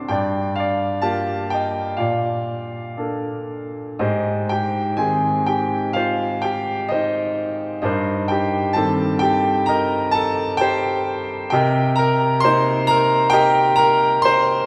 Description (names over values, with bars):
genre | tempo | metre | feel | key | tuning
classical, lyrical solo piano | 63 BPM | 4/4 | uneven beats, rubato | unclear | A4 = 440 Hz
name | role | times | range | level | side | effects
bright concert grand piano | solo | 0.0-14.7 s | G2 to D6 | -20 LUFS | equal | none
room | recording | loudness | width
wet church reverb, RT60 3.8 s | recorded in a church or concert hall | -20 LUFS | mono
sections
0.0-4.0 A section; 4.0-14.7 B section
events
none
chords
0.1 Gm7; 2.0 Bbmaj7; 4.0 Abmaj7; 7.8 Eb6/G; 11.5 Cm7